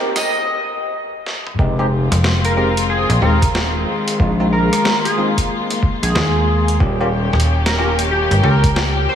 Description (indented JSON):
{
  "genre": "glitch hop",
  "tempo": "92 BPM",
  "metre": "4/4",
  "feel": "swing 62% on 16ths",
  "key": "F minor",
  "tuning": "A4 = 442 Hz",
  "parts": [
    { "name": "warm chamber string section", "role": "sustained chords", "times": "0.0-9.2 s", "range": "Eb3 to G4", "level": "-22 LUFS", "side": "left 3 dB", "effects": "sidechain pumping" },
    { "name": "bell-like tine electric piano", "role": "stabs", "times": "0.0-8.5 s", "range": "Ab3 to G4", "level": "-24 LUFS", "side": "equal", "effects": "analog chorus, sidechain pumping, analog delay" },
    { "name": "sync lead", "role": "melody", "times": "0.2-9.2 s", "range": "G4 to Eb5", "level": "-22 LUFS", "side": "right 1 dB", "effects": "chorus, analog delay" },
    { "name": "boom bap sampler-style drum kit", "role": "drums", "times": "0.2-8.9 s", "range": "hi-hat, rim click, snare drum, toms", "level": "-23 LUFS", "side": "equal", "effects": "none" },
    { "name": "gritty driven synth bass", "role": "bass", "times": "1.6-7.3 s", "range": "Eb1 to Bb1", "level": "-18 LUFS", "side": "equal", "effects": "tube saturation, high-pass filter" },
    { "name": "electronic kick drum", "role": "drums", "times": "1.6-8.7 s", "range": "none", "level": "-17 LUFS", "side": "equal", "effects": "none" },
    { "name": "slap-like FM bass", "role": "bass", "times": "2.1-9.1 s", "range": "Eb1 to Eb2", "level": "-17 LUFS", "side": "equal", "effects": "none" }
  ],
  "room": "moderate plate reverb, RT60 3.9 s",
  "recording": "dreamy mix soaked in reverb, high-pass filter, small room ambience",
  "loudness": "-14 LUFS",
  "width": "side -9 dB against mid",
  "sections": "0.0-1.6 A section; 1.6-9.2 B section",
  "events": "build-up 0.0-1.6; drum fill 0.0, 1.3-1.6; break 0.3-1.6; drop 1.6-9.2",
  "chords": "0.0 Abmaj7; 1.6 Fm7; 4.2 Bb7sus4; 6.8 Eb7",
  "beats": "0.28 0.94 | 1.59 2.24 2.89 3.54 | 4.20 4.85 5.50 6.15 | 6.80 7.46 8.11 8.76"
}